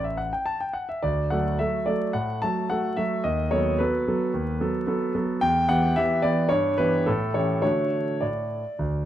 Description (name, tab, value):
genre	classical-period piano sonatina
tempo	108 BPM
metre	4/4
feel	straight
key	D major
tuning	A4 = 440 Hz
part	clear concert grand piano	solo	0.0-9.1 s	A1 to A5	-22 LUFS	equal	none
room	moderate recital hall reverb, RT60 1.4 s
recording	close, detailed microphones, vinyl crackle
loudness	-22 LUFS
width	side -11 dB against mid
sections	0.0-9.1 A section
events	none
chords	0.0 A5; 1.0 D; 3.2 B7/D#; 5.4 Em; 6.5 Em/G; 7.1 A7; 7.6 D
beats	0.45 | 1.01 1.57 2.13 2.68 | 3.23 3.78 4.33 4.88 | 5.42 5.97 6.52 7.08 | 7.64 8.21 8.79